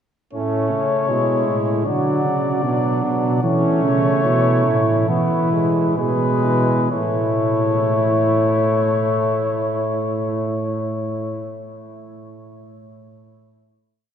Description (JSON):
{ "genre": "classical, imitative canzona for brass ensemble", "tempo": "62-79 BPM", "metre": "4/4", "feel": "straight", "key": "A major", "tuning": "A4 = 440 Hz", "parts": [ { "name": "dark trumpet", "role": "melody", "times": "0.3-11.5 s", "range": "B4 to D5", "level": "-23 LUFS", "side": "left 5 dB", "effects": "none" }, { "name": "mellow flugelhorn", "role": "second line", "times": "0.3-11.5 s", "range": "C#4 to G#4", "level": "-25 LUFS", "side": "right 5 dB", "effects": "none" }, { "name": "clear trombone", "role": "accompaniment", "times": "0.3-11.5 s", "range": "F#3 to B3", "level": "-24 LUFS", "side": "right 2 dB", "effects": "none" }, { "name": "mellow tuba", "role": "bass", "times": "0.3-11.5 s", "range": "A2 to E3", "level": "-21 LUFS", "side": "right 1 dB", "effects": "none" } ], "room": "wet cathedral reverb, RT60 7.1 s", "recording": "heard from further back in the room", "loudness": "-17 LUFS", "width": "side -8 dB against mid", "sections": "0.3-6.9 exposition; 6.9-10.8 final chord", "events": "slowing down 0.3-8.8", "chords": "0.3 A; 1.9 Bm; 3.4 A; 5.1 E; 6.9 A" }